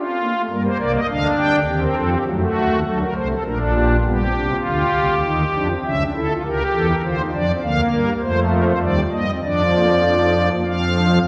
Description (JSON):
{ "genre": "classical, baroque-style 3-part fugue for pipe organ", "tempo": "101 BPM", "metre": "3/4", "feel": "straight", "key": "G minor, Bb major from 7.6 s", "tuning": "A4 = 441 Hz", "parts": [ { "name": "pipe organ, strings celeste", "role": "solo", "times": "0.0-11.2 s", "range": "Bb1 to G5", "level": "-19 LUFS", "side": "equal", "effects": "none" } ], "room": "wet church reverb, RT60 2.5 s", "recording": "recorded in a church or concert hall", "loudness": "-19 LUFS", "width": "mono", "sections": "0.0-4.0 A section; 4.0-11.3 B section", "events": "none", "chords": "0.5 Gm; 1.7 Cm/Eb; 2.3 D; 3.5 Gm/Bb; 4.0 G7(no3); 5.2 Cm/Eb; 5.8 A7/C#; 7.0 Dm; 7.6 Bb/D; 8.8 Eb; 9.4 Bb/F; 10.7 F5", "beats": "| 0.49 1.08 1.68 | 2.27 2.86 3.45 | 4.05 4.65 5.25 | 5.85 6.44 7.04 | 7.62 8.21 8.81 | 9.42 10.04 10.66" }